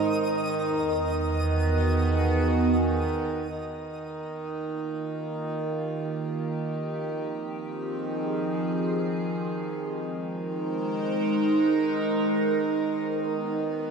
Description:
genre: ambient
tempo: free time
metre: none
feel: none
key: Eb major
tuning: A4 = 440 Hz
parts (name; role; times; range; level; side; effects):
- evolving wavetable pad; sustained chords; 0.0-13.9 s; Eb3 to C5; -27 LUFS; right 1 dB; chorus, built-in reverb, phaser, shimmer reverb
- deep rumbling drone; bass; 0.0-3.4 s; E2 to Ab2; -28 LUFS; right 1 dB; built-in reverb
- hand-pumped harmonium; drone; 0.0-13.9 s; Eb3; -31 LUFS; right 3 dB; stereo widening
- twinkling granular texture; texture; 0.0-3.5 s; Eb5 to Eb6; -37 LUFS; right 2 dB; built-in reverb, shimmer reverb
room: wet concert hall reverb, RT60 2.3 s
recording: dark, warm production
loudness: -25 LUFS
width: side -5 dB against mid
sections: 0.0-3.5 A section; 3.5-13.9 B section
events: fade-in on ambient pad 3.5-13.9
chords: 0.3 E; 3.5 Ebadd9; 6.6 Fm7; 9.8 Abadd9; 12.9 B/D#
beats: free time

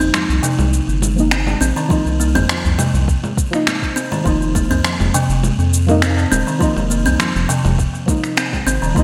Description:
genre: organic downtempo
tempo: 102 BPM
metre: 4/4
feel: straight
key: unclear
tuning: A4 = 439 Hz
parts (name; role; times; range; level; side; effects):
- deep mellow chord stab; accompaniment; 0.0-9.0 s; F3 to Eb4; -24 LUFS; equal; chorus, sidechain pumping, delay
- buzzing kalimba; arpeggios; 0.0-9.0 s; C3 to C4; -22 LUFS; equal; delay
- round analog bass; bass; 0.0-9.0 s; Eb1 to F2; -20 LUFS; equal; sidechain pumping
- electronic cabasa, finger snaps and congas; drums; 0.0-9.0 s; none; -24 LUFS; equal; small room reverb, gated reverb
- tabla; percussion; 0.0-8.9 s; none; -29 LUFS; equal; none
- electronic kick drum; drums; 1.9-9.0 s; none; -22 LUFS; equal; small room reverb
- dark studio string section; sustained chords; 9.0 s; none; barely audible; none; none
room: moderate lush hall reverb, RT60 1.7 s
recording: bright 1980s-style digital production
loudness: -17 LUFS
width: mono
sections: 0.0-9.0 A section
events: none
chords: 0.0 Cm7; 4.3 F7(no3)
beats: 0.14 0.73 1.31 | 1.90 2.49 3.08 3.67 | 4.26 4.84 5.43 6.02 | 6.61 7.20 7.79 8.37 | 8.96

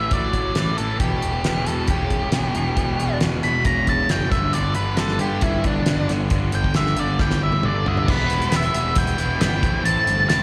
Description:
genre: classic rock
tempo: 136 BPM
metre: 4/4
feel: straight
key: E minor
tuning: A4 = 441 Hz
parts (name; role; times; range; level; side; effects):
- octave-fuzz lead guitar; melody; 0.0-10.4 s; D4 to B5; -26 LUFS; equal; distortion, slapback echo
- overdriven electric guitar; riff; 0.0-10.4 s; E2 to E4; -28 LUFS; equal; spring reverb, slapback echo
- fuzz picked electric bass; bass; 0.0-10.4 s; E1 to G2; -26 LUFS; equal; overdrive
- damped 70s drum kit; drums; 0.1-10.4 s; crash cymbal, hi-hat, kick drum, snare drum, toms; -26 LUFS; equal; none
room: little or no reverb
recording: live gig heard through the venue's PA, recital hall reverb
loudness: -21 LUFS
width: mono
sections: 0.0-8.1 A section; 8.1-10.4 B section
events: lead electric guitar solo 0.0-8.1; drum fill 7.2-8.1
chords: 0.0 A5; 1.0 Em; 4.3 G5; 8.1 Em; 9.6 Am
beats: 0.12 0.56 | 1.00 1.45 1.89 2.33 | 2.77 3.22 3.66 4.10 | 4.54 4.99 5.43 5.87 | 6.32 6.76 7.20 7.64 | 8.09 8.53 8.97 9.41 | 9.85 10.29

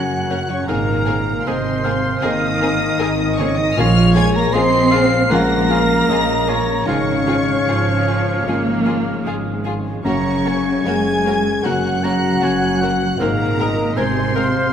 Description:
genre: cinematic, emotional film score for orchestra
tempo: 77 BPM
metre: 4/4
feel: rubato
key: unclear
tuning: A4 = 440 Hz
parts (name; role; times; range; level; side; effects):
- warm studio violin section; melody; 0.0-14.7 s; Bb5 to C7; -25 LUFS; left 3 dB; none
- hollow concert flute; second line; 0.0-14.7 s; Bb4 to C6; -25 LUFS; equal; none
- warm oboe; second line; 0.0-14.7 s; Db5 to Bb5; -25 LUFS; right 1 dB; none
- felt-muted upright piano; accompaniment; 0.0-14.7 s; Gb2 to Bb4; -24 LUFS; left 2 dB; none
- dark French horn section; sustained chords; 0.0-14.7 s; Bb3 to C5; -23 LUFS; left 3 dB; none
- concert harp; arpeggios; 0.0-14.7 s; Gb2 to Db5; -26 LUFS; left 7 dB; none
- warm studio cello section; bass; 0.0-14.7 s; Bb2 to C4; -23 LUFS; right 4 dB; none
- warm studio double bass section; bass; 0.0-14.6 s; Gb1 to Gb2; -24 LUFS; right 4 dB; none
- warm studio violin section; second line; 0.3-14.4 s; Db4 to Bb4; -28 LUFS; left 2 dB; none
- warm studio viola section; accompaniment; 0.3-14.4 s; Db3 to Db4; -27 LUFS; right 2 dB; none
room: wet concert hall reverb, RT60 2.4 s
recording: none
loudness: -15 LUFS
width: side -8 dB against mid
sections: 0.0-14.7 A section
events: none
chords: 0.0 Gb; 0.7 Abadd9; 3.8 Bbm7; 6.9 Db/Ab; 10.1 Gb; 13.2 Abadd9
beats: | 0.70 1.47 2.24 3.00 | 3.77 4.54 5.31 6.08 | 6.87 7.67 8.46 9.26 | 10.06 10.87 11.65 12.43 | 13.21 13.98

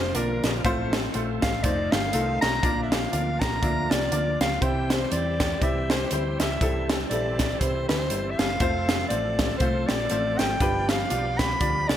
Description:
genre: uptempo gospel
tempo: 120 BPM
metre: 4/4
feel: swing 57% on 8ths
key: F major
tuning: A4 = 441 Hz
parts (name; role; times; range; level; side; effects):
- breathy soprano saxophone; melody; 0.0-12.0 s; Bb4 to B5; -28 LUFS; equal; none
- bright tonewheel organ; sustained chords; 0.0-12.0 s; D3 to A4; -35 LUFS; right 2 dB; fast rotary speaker, overdrive, chorus vibrato
- hollow-body short-scale fingered electric bass; bass; 0.0-12.0 s; F1 to E2; -30 LUFS; equal; none
- clear baby grand piano; accompaniment; 0.1-11.9 s; G2 to F5; -30 LUFS; left 1 dB; wide subtle chorus
- crisp fusion drum kit; drums; 0.1-12.0 s; hi-hat, kick drum, snare drum; -26 LUFS; equal; gated reverb
room: light reverb, studio ambience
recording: bright 1980s-style digital production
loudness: -22 LUFS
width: side -10 dB against mid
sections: 0.0-12.0 A section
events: none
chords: 0.0 Bb; 0.6 F/A; 1.6 F7; 2.6 Bb; 4.6 C; 8.6 F; 10.6 G7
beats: 0.15 | 0.65 1.14 1.64 2.14 | 2.63 3.13 3.62 4.12 | 4.62 5.12 5.61 6.11 | 6.61 7.11 7.61 8.11 | 8.61 9.11 9.61 10.11 | 10.61 11.10 11.60

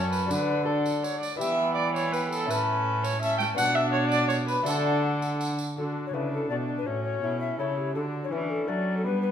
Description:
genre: classical, renaissance-style consort dance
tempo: 165 BPM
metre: 3/4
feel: straight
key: unclear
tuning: A4 = 440 Hz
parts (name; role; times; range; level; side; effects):
- alto recorder; melody; 0.0-9.3 s; A4 to A5; -33 LUFS; left 4 dB; none
- warm viola; second line; 0.0-9.3 s; D4 to G5; -29 LUFS; right 2 dB; none
- lute; accompaniment; 0.0-9.3 s; F#2 to D5; -34 LUFS; left 4 dB; none
- warm viola; accompaniment; 0.0-9.3 s; B3 to E4; -32 LUFS; left 1 dB; none
- rich cello; bass; 0.0-9.3 s; F#2 to G3; -31 LUFS; right 1 dB; none
- tambourine; percussion; 0.1-5.8 s; none; -39 LUFS; right 3 dB; none
room: wet stone room reverb, RT60 1.3 s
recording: none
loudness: -24 LUFS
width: side -9 dB against mid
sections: 0.0-5.8 A section; 5.8-9.3 B section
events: none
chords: 0.3 D; 1.4 Em; 2.5 A; 3.6 Bm; 4.7 D; 6.9 A; 7.9 D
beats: | 0.30 0.67 1.04 | 1.40 1.76 2.13 | 2.49 2.85 3.21 | 3.57 3.93 4.30 | 4.66 5.03 5.40 | 5.77 6.14 6.50 | 6.86 7.22 7.59 | 7.95 8.31 8.67 | 9.04

